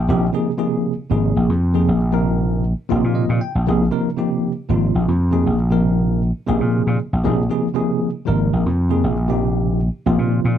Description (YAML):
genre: jazz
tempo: 234 BPM (eighths)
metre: 7/8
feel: straight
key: unclear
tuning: A4 = 440 Hz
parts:
  - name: bell-like tine electric piano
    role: accompaniment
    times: 0.0-10.6 s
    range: C3 to G5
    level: -20 LUFS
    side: equal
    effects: fast stereo tremolo
  - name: vintage slap bass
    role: bass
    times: 0.0-10.6 s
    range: Ab1 to Bb2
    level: -17 LUFS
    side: equal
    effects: none
room: moderate small room reverb, RT60 0.5 s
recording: none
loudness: -16 LUFS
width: side -10 dB against mid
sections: 0.0-10.6 A section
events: tine electric piano fill 2.9-3.7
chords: 0.0 Bb9sus4